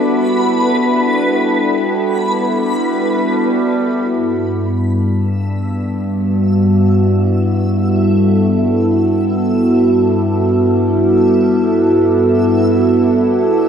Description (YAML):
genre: ambient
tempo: free time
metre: none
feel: none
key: G major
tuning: A4 = 440 Hz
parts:
  - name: evolving wavetable pad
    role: sustained chords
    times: 0.0-13.7 s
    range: G2 to A4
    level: -12 LUFS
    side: equal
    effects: chorus, built-in reverb
  - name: overtone-sweeping drone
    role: drone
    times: 0.0-13.7 s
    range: G3 to D4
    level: -25 LUFS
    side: left 2 dB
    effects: chorus, built-in reverb
  - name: backwards swelling texture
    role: texture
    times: 0.0-13.7 s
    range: B4 to E6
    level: -24 LUFS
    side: equal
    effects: built-in reverb, ensemble chorus
room: wet lush hall reverb, RT60 3.1 s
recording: dreamy mix soaked in reverb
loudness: -12 LUFS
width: side -8 dB against mid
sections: 0.0-4.1 A section; 4.1-13.7 B section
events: fade-in on synth drone 4.1-13.7; fade-in on synth texture 4.1-13.7; filter sweep on ambient pad 4.1-13.7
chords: 0.0 Gmaj9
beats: free time